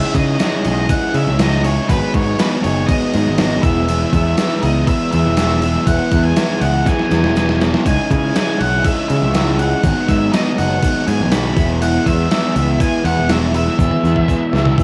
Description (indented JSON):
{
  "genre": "indie rock",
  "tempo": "121 BPM",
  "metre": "4/4",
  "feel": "straight",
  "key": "E major",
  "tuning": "A4 = 440 Hz",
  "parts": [
    { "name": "octave-fuzz lead guitar", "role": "melody", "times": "0.0-14.8 s", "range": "B4 to B5", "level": "-25 LUFS", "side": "equal", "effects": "distortion, slapback echo, plate reverb" },
    { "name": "electric guitar through a small old amp", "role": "riff", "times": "0.0-14.8 s", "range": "E3 to G#4", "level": "-23 LUFS", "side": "equal", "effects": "lush chorus, slapback echo" },
    { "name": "overdriven semi-hollow guitar", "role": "riff", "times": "0.0-14.8 s", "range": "E2 to G#4", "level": "-24 LUFS", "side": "equal", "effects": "spring reverb" },
    { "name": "growling fingered electric bass", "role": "bass", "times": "0.1-14.7 s", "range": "E1 to C#3", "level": "-20 LUFS", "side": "equal", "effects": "overdrive" },
    { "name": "gated 80s digital drum machine", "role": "drums", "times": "0.1-14.8 s", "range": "crash cymbal, kick drum, snare drum, toms", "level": "-21 LUFS", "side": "equal", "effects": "gated reverb, gated reverb snare, overdrive" },
    { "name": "egg shaker", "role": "percussion", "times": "0.1-14.8 s", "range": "none", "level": "-44 LUFS", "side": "equal", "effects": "none" }
  ],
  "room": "light reverb",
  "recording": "worn, warbling old tape, cassette tape, warbly pitch drift",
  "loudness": "-16 LUFS",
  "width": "mono",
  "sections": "0.0-14.8 A section",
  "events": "drum fill 6.9-7.9, 13.8-14.8",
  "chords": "0.0 C#madd9; 1.9 G#m7; 3.6 E; 7.9 C#madd9; 9.8 G#m7; 11.6 E",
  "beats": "0.40 0.90 1.40 | 1.90 2.39 2.89 3.39 | 3.88 4.38 4.88 5.38 | 5.87 6.37 6.87 7.36 | 7.86 8.36 8.85 9.35 | 9.84 10.34 10.83 11.32 | 11.82 12.31 12.81 13.30 | 13.80 14.29 14.79"
}